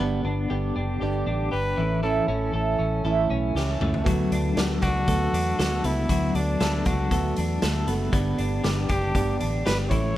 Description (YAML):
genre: jangly indie pop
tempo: 118 BPM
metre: 4/4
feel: straight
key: D major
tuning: A4 = 440 Hz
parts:
  - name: fingerpicked plugged-in steel-string acoustic guitar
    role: accompaniment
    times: 0.0-10.2 s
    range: G2 to F#4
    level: -29 LUFS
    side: right 5 dB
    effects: none
  - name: twelve-string electric guitar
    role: arpeggios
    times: 0.0-10.2 s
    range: E3 to A4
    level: -29 LUFS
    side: left 3 dB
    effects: tremolo, digital delay
  - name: vintage muted fingered electric bass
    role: bass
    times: 0.0-10.1 s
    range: F#1 to E2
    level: -27 LUFS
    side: equal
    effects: none
  - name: warm trumpet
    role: melody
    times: 0.8-10.2 s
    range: D4 to C#5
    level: -30 LUFS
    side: equal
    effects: none
  - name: raw garage drum kit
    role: drums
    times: 3.6-10.0 s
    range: hi-hat, kick drum, snare drum, toms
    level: -28 LUFS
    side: equal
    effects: none
room: small room ambience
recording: rough home demo mix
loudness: -22 LUFS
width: side -14 dB against mid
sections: 0.0-10.2 A section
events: drum fill 3.6-4.1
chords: 0.0 G; 1.8 A; 4.1 D6; 8.1 G